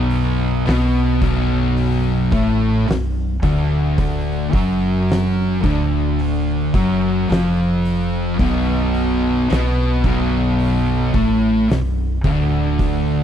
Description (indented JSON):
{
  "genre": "stoner and doom metal",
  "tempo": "54 BPM",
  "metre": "4/4",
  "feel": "straight",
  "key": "B minor",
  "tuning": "A4 = 441 Hz",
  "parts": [
    { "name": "overdriven electric guitar", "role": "riff", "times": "0.0-13.2 s", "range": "B1 to B3", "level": "-23 LUFS", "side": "equal", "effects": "none" },
    { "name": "thick fuzz guitar", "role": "riff", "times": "0.0-13.2 s", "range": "B1 to B3", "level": "-22 LUFS", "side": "left 9 dB", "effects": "distortion" },
    { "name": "thick fuzz guitar", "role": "riff", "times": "0.0-13.2 s", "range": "B1 to B3", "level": "-22 LUFS", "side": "right 8 dB", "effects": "distortion" },
    { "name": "hollow-body short-scale fingered electric bass", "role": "bass", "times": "0.0-13.2 s", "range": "B0 to B1", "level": "-22 LUFS", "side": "equal", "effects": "overdrive" },
    { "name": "oversized low-tuned drum kit", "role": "drums", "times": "0.1-13.1 s", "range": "hi-hat, kick drum, snare drum", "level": "-22 LUFS", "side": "equal", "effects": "none" }
  ],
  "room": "little or no reverb",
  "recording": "dry, close 1970s-style studio recording",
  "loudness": "-16 LUFS",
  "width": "side -9 dB against mid",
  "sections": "0.0-13.2 A section",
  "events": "none",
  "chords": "0.0 Bm"
}